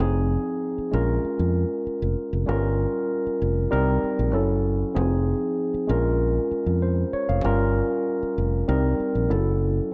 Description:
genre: lush 1970s-style soul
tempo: 97 BPM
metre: 4/4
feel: straight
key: F minor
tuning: A4 = 440 Hz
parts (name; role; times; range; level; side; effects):
- barky tine electric piano; accompaniment; 0.0-9.9 s; F3 to F5; -26 LUFS; equal; overdrive, subtle chorus
- fingered electric bass; bass; 0.0-9.8 s; F1 to F2; -26 LUFS; equal; none
room: light reverb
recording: none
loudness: -24 LUFS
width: mono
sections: 0.0-9.9 A section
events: none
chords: 0.0 Fm7; 0.9 Bbm7; 2.5 Gm7b5; 3.7 Cm7; 4.3 Gbm7; 5.0 Fm7; 5.9 Bbm7; 7.4 Gm7b5; 8.7 Cm7; 9.3 Gbm7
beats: | 0.00 0.61 1.24 1.86 | 2.48 3.10 3.72 4.34 | 4.96 5.58 6.20 6.82 | 7.44 8.06 8.68 9.30 | 9.92

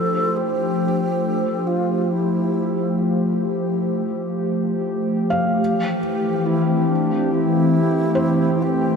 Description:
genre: ambient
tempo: free time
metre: none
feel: none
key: unclear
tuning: A4 = 440 Hz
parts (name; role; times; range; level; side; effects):
- mellow wooden-headed alto flute; melody; 0.0-9.0 s; D4 to A4; -26 LUFS; right 2 dB; ping-pong delay
- warbly tape-like pad; sustained chords; 0.0-9.0 s; E3 to C5; -19 LUFS; left 1 dB; chorus, built-in reverb
- felt-muted upright piano; arpeggios; 0.0-9.0 s; C5 to F5; -28 LUFS; equal; ping-pong delay
room: wet huge ambient reverb, RT60 7.3 s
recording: none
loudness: -18 LUFS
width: side -6 dB against mid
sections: 0.0-9.0 A section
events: none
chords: 0.0 Fadd9; 5.6 Am7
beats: free time

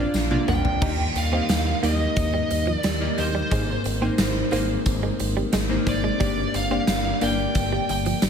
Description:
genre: 1980s-style pop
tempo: 89 BPM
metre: 4/4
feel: straight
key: Eb major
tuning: A4 = 439 Hz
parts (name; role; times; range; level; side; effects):
- glassy digital keys; accompaniment; 0.0-8.3 s; G2 to Eb5; -27 LUFS; left 2 dB; chorus
- glass harmonica; sustained chords; 0.0-8.3 s; G3 to F5; -33 LUFS; left 3 dB; none
- direct-recorded clean electric guitar; riff; 0.0-8.3 s; F3 to Eb4; -32 LUFS; right 7 dB; analog chorus, tape echo
- smooth gliding synth bass; bass; 0.0-8.3 s; G1 to Eb2; -27 LUFS; equal; none
- big rock drum kit; drums; 0.1-8.3 s; crash cymbal, hi-hat, kick drum, snare drum, tambourine, toms; -25 LUFS; equal; none
- tambourine; percussion; 0.1-8.3 s; none; -43 LUFS; left 10 dB; none
- fuzz lead guitar; melody; 0.5-8.3 s; C5 to G5; -28 LUFS; right 3 dB; distortion, tape echo
room: light reverb, studio ambience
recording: none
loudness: -20 LUFS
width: side -7 dB against mid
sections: 0.8-8.3 A section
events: drum fill 0.1-0.8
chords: 0.0 Bb; 0.8 Eb; 3.5 Abadd9; 6.2 Gm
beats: 0.14 | 0.81 1.49 2.16 2.84 | 3.51 4.19 4.86 5.53 | 6.21 6.88 7.56 8.23

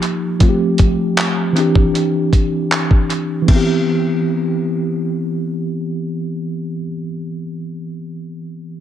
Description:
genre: contemporary R&B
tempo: 78 BPM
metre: 4/4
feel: straight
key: C major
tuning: A4 = 440 Hz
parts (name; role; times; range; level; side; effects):
- mellow tine electric piano; accompaniment; 0.0-8.8 s; E3 to G4; -18 LUFS; equal; medium stereo tremolo, analog delay
- dusty soul sampler-style drum kit; drums; 0.0-3.7 s; crash cymbal, handclaps, hi-hat, kick drum; -15 LUFS; equal; analog delay
room: light reverb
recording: echo-heavy mix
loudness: -15 LUFS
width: side -10 dB against mid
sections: 0.0-3.5 A section; 3.5-6.6 B section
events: none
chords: 0.4 G9sus4; 1.6 D9sus4; 3.5 Cmaj7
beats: | 0.41 1.17 1.94 2.71 | 3.48 4.25 5.02 5.79

